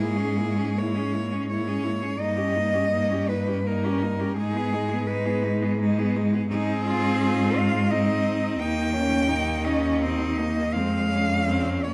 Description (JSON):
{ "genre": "classical, lyrical piece for cello ensemble", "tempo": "84 BPM", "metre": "3/4", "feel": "uneven beats, rubato", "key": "G# minor, Ab major from 6.5 s", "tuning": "A4 = 444 Hz", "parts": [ { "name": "rich cello", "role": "melody", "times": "0.0-11.9 s", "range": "G#4 to G5", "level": "-31 LUFS", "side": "equal", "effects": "none" }, { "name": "rich cello", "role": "second line", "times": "0.0-11.9 s", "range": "C4 to G#4", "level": "-33 LUFS", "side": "equal", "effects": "none" }, { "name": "warm cello", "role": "accompaniment", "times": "0.0-11.9 s", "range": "G#3 to C#4", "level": "-30 LUFS", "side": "equal", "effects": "none" }, { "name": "rich cello", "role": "bass", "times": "0.0-11.9 s", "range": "Eb2 to G#2", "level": "-29 LUFS", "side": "equal", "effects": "none" } ], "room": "moderate recital hall reverb, RT60 1.4 s", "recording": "dark, warm production", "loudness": "-24 LUFS", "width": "mono", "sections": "0.0-11.9 A section", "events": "none", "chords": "0.0 A#m7b5/G#; 2.2 D#7/G; 4.4 G#m; 6.5 Ab; 8.6 Eb7; 10.7 Fm" }